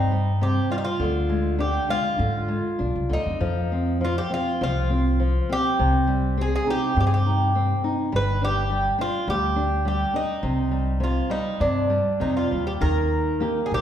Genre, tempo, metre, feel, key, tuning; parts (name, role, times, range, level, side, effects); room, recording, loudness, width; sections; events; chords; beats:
fado-style ballad; 101 BPM; 4/4; rubato; C minor; A4 = 439 Hz
Irish bouzouki; melody; 0.0-13.8 s; D4 to B4; -25 LUFS; equal
flamenco guitar; accompaniment; 0.0-13.8 s; C3 to G4; -26 LUFS; equal
upright bass; bass; 0.0-13.8 s; G1 to Ab2; -24 LUFS; equal
wet recital hall reverb, RT60 1.5 s; heard from further back in the room; -21 LUFS; side -10 dB against mid
0.0-12.8 A section
0.0 Cm; 1.0 Ddim; 3.4 F5; 5.8 Cm; 8.1 G5; 10.4 Cmadd9; 12.8 Eb
0.41 | 0.99 1.59 2.19 2.79 | 3.40 4.01 4.61 5.20 | 5.79 6.38 6.96 7.54 | 8.12 8.70 9.27 9.85 | 10.43 11.01 11.60 12.21 | 12.82 13.42